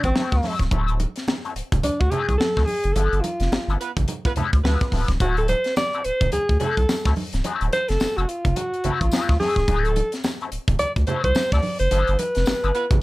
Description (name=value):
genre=funk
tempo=107 BPM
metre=4/4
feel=swing 60% on 16ths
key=D mixolydian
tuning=A4 = 436 Hz
part: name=breathy alto saxophone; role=melody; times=0.0-13.0 s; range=C4 to D5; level=-23 LUFS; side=equal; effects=none
part: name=electric guitar with an envelope filter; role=accompaniment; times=0.0-13.0 s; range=F3 to A4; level=-28 LUFS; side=left 5 dB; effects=wah
part: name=saturated sub bass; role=bass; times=0.0-13.0 s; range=C#1 to D2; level=-22 LUFS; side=equal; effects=none
part: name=tight funk drum kit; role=drums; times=0.0-13.0 s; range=hi-hat, kick drum, snare drum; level=-25 LUFS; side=equal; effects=none
part: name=congas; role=percussion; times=0.2-13.0 s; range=none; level=-30 LUFS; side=right 3 dB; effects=none
part: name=clear horn section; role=second line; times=3.8-5.1, 12.7-12.9 s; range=B3 to B4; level=-29 LUFS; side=right 6 dB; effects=none
part: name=tambourine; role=percussion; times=5.8-12.6 s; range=none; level=-37 LUFS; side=left 5 dB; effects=none
room=little or no reverb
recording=none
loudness=-19 LUFS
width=side -19 dB against mid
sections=0.0-13.0 A section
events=alto saxophone solo 0.0-13.0; band accent 3.0-5.2, 11.9-13.0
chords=0.0 D9; 3.0 G13; 5.2 D9; 11.9 G13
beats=0.15 | 0.72 1.28 1.84 2.40 | 2.96 3.52 4.08 4.64 | 5.20 5.76 6.32 6.88 | 7.44 8.00 8.56 9.12 | 9.68 10.23 10.79 11.35 | 11.91 12.46 13.02